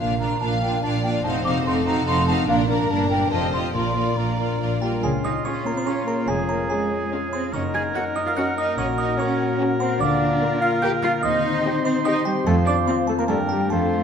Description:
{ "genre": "cinematic, playful, whimsical film cue", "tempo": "144 BPM", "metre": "3/4", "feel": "straight", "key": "Bb major, Db major from 5.0 s, Bb major from 10.0 s", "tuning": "A4 = 438 Hz", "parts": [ { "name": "mellow hollow concert flute", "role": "second line", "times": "0.0-14.0 s", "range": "Db5 to D6", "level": "-28 LUFS", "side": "equal", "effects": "none" }, { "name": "rich studio violin section", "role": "second line", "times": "0.0-13.6 s", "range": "Bb3 to F5", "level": "-32 LUFS", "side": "left 2 dB", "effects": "none" }, { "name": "rich studio viola section", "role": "accompaniment", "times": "0.0-13.6 s", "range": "G3 to F4", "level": "-28 LUFS", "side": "right 2 dB", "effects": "none" }, { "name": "concert harp", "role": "arpeggios", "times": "0.0-14.0 s", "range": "F2 to G5", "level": "-29 LUFS", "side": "left 6 dB", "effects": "none" }, { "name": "rich studio cello section", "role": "bass", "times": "0.0-14.0 s", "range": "F2 to Ab4", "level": "-28 LUFS", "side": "right 3 dB", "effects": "none" }, { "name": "rich studio double bass section", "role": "bass", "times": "0.0-14.0 s", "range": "F1 to G2", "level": "-28 LUFS", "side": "right 4 dB", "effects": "none" }, { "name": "rich studio violin section", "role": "melody", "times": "0.4-13.6 s", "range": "D4 to F5", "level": "-32 LUFS", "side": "left 3 dB", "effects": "none" }, { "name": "music box", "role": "melody", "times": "4.8-14.0 s", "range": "G5 to Ab6", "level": "-29 LUFS", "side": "right 6 dB", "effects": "none" }, { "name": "mellow clarinet", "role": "second line", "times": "4.8-14.0 s", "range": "G4 to Ab5", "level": "-29 LUFS", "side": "left 2 dB", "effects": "none" }, { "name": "clear oboe", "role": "second line", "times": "5.0-14.0 s", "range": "F4 to C5", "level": "-30 LUFS", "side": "right 2 dB", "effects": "none" }, { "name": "mellow French horn section", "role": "sustained chords", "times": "5.0-14.0 s", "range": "Bb3 to Gb4", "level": "-28 LUFS", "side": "left 4 dB", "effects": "none" } ], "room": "wet concert hall reverb, RT60 1.9 s", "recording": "none", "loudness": "-19 LUFS", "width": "side -7 dB against mid", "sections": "0.0-5.0 A section; 5.0-14.0 B section", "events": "none", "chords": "0.0 Bb; 1.2 F7b9; 2.5 Bb; 2.9 Gm; 3.3 F9; 3.7 Bb; 5.0 Db; 6.3 Db/F; 7.5 Gb6; 8.8 Gb/Bb; 10.0 Bb/D; 11.2 Cm/Eb; 12.5 F; 13.3 Gm" }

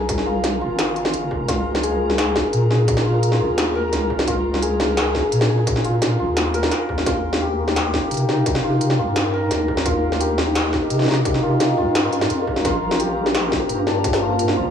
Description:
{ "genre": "half-time drum and bass", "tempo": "172 BPM", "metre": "4/4", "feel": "half-time", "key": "unclear", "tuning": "A4 = 441 Hz", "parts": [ { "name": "santur", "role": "arpeggios", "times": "0.0-14.7 s", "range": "D4 to Bb4", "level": "-23 LUFS", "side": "left 2 dB", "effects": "dub echo" }, { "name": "deep soft wobble bass", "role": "bass", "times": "0.0-14.7 s", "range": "Eb1 to C3", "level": "-23 LUFS", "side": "equal", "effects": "chorus" }, { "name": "flickering grainy texture", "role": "texture", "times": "0.0-14.7 s", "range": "Bb4", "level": "-29 LUFS", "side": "left 1 dB", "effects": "built-in reverb" }, { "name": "electronic kick drum", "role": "drums", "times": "0.1-14.1 s", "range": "none", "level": "-27 LUFS", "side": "equal", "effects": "distortion" }, { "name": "industrial drum kit", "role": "drums", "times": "0.1-14.5 s", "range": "hi-hat, snare drum", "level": "-22 LUFS", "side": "equal", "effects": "none" }, { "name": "dark analog pad", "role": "sustained chords", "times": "8.0-14.7 s", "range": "Bb3 to F5", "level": "-26 LUFS", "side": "right 2 dB", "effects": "chorus, sidechain pumping" } ], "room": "moderate plate reverb, RT60 1.3 s", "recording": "echo-heavy mix, small room ambience", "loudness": "-17 LUFS", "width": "side -8 dB against mid", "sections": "0.0-14.7 A section", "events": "none", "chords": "0.0 Fm; 1.5 Dbsus2; 7.1 Eb; 12.6 Bb6" }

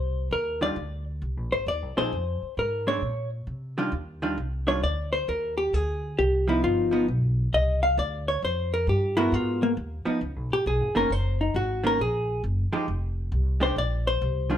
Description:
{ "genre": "jazz, small-group swing and bop", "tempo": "134 BPM", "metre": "4/4", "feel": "swing 66% on 8ths", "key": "Eb major", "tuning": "A4 = 440 Hz", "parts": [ { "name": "vintage hollow-body jazz guitar", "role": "melody", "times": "0.0-14.6 s", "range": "Bb3 to F5", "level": "-26 LUFS", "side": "left 1 dB", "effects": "none" }, { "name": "upright bass", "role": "bass", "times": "0.0-14.6 s", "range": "F1 to C3", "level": "-28 LUFS", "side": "equal", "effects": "none" }, { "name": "vintage hollow-body jazz guitar", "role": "accompaniment", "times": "0.6-14.6 s", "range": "Eb3 to Bb4", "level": "-27 LUFS", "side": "right 2 dB", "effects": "none" } ], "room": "light reverb", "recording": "close, detailed microphones", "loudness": "-24 LUFS", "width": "side -10 dB against mid", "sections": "0.0-3.9 A section; 3.9-14.6 A section", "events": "none", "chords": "0.3 Ebmaj9; 1.2 Ab69; 2.1 Fm; 3.0 Bbadd9; 3.9 Ebmaj9; 5.7 Dm7b5; 6.6 G7b13; 7.5 C9sus4; 9.3 Abm9; 10.2 Db9; 11.1 Gb6; 12.9 Fmadd9; 13.8 Bbadd9" }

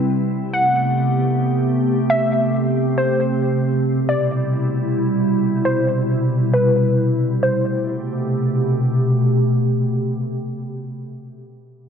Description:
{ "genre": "hip hop", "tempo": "free time", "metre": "none", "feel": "none", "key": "A dorian", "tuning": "A4 = 440 Hz", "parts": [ { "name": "glassy FM pad", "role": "sustained chords", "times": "0.0-11.3 s", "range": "B2 to G4", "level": "-18 LUFS", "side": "equal", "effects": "ensemble chorus, built-in reverb, low-pass filter" }, { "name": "warbly dusty pluck", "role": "melody", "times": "0.5-8.7 s", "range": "B4 to F#5", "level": "-21 LUFS", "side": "left 2 dB", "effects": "chorus, phaser, low-pass filter, tape echo" } ], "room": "moderate lush hall reverb, RT60 2.0 s", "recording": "dark, warm production", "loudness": "-16 LUFS", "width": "side -7 dB against mid", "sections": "0.0-7.4 A section; 7.4-11.0 B section", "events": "filter sweep 0.0-7.4", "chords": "0.3 Am9; 3.9 Cmaj7; 7.4 Am9" }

